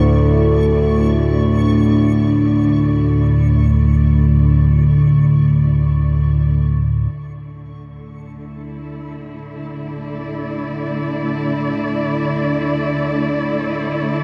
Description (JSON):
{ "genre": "dark ambient drone", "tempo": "free time", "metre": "none", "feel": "none", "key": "unclear", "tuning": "A4 = 439 Hz", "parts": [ { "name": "dark studio cello section", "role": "sustained chords", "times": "0.0-14.2 s", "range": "D3 to D5", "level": "-25 LUFS", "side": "equal", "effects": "none" }, { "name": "analog drone", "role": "drone", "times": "0.0-14.2 s", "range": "D2 to A2", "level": "-18 LUFS", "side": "equal", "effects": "chorus" }, { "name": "backwards swelling texture", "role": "texture", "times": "0.0-14.2 s", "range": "A4 to C#6", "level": "-39 LUFS", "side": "equal", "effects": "built-in reverb, shimmer reverb" } ], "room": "wet huge ambient reverb, RT60 7.5 s", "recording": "none", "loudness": "-16 LUFS", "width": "mono", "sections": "0.0-7.1 A section; 7.1-14.2 B section", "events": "fade-out on cello section 0.0-7.1; fade-out on synth texture 0.0-7.1; fade-in on synth drone 7.1-14.2", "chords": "0.0 D5", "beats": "free time" }